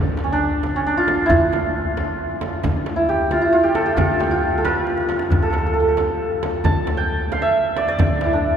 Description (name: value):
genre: Persian modal ensemble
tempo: 90 BPM (dotted quarters)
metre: 6/8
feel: straight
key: D avaz esfahan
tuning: A4 = 440 Hz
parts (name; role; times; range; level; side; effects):
- santur; melody; 0.0-8.6 s; C#4 to A5; -18 LUFS; right 1 dB; none
- upright bass; bass; 0.0-8.6 s; D2; -27 LUFS; equal; none
- frame drum; percussion; 0.2-8.3 s; none; -26 LUFS; right 3 dB; none
- tombak; percussion; 0.2-8.5 s; none; -27 LUFS; left 2 dB; none
room: wet cathedral reverb, RT60 5.3 s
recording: recorded in a church or concert hall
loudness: -17 LUFS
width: side -8 dB against mid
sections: 0.0-8.6 A section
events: drum fill 4.9-5.3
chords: none